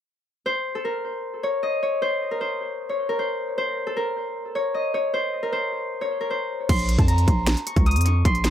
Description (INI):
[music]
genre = hip hop, trap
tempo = 154 BPM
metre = 4/4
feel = half-time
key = Bb harmonic minor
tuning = A4 = 439 Hz
[part]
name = Celtic harp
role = melody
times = 0.5-8.5 s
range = A4 to Eb6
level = -24 LUFS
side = left 1 dB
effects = analog delay
[part]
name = long sustained 808-style bass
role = bass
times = 6.7-8.5 s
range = A1 to F2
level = -20 LUFS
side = equal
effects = none
[part]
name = trap drum kit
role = drums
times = 6.7-8.5 s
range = crash cymbal, finger snaps, hi-hat, kick drum, snare drum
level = -21 LUFS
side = equal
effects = none
[sound]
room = little or no reverb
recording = echo-heavy mix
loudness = -22 LUFS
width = side -10 dB against mid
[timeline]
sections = 0.5-6.7 A section; 6.7-8.5 B section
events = none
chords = 0.5 N.C.; 6.7 Bbmadd9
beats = | 0.46 0.85 1.24 1.63 | 2.02 2.41 2.80 3.19 | 3.58 3.97 4.36 4.75 | 5.13 5.52 5.91 6.30 | 6.69 7.08 7.47 7.86 | 8.25